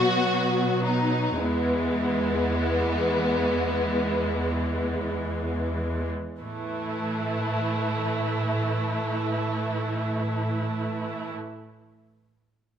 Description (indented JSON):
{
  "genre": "cinematic",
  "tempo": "free time",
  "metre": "none",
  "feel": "none",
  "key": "unclear",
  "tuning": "A4 = 441 Hz",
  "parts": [
    { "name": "warm studio violin section", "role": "second line", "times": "0.0-11.3 s", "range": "A3 to F#4", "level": "-28 LUFS", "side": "left 1 dB", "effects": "none" },
    { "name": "rich studio viola section", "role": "accompaniment", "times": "0.0-11.3 s", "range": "E3 to E4", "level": "-28 LUFS", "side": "right 1 dB", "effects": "none" },
    { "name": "rich studio cello section", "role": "bass", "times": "0.0-11.3 s", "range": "E2 to B2", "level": "-30 LUFS", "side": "right 1 dB", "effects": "none" }
  ],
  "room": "light reverb",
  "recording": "close, detailed microphones",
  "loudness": "-24 LUFS",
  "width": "side -8 dB against mid",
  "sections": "0.0-6.4 A section; 6.4-11.8 B section",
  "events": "slowing down 0.0-6.4",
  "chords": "0.0 B5; 1.4 E; 6.4 A5",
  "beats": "free time"
}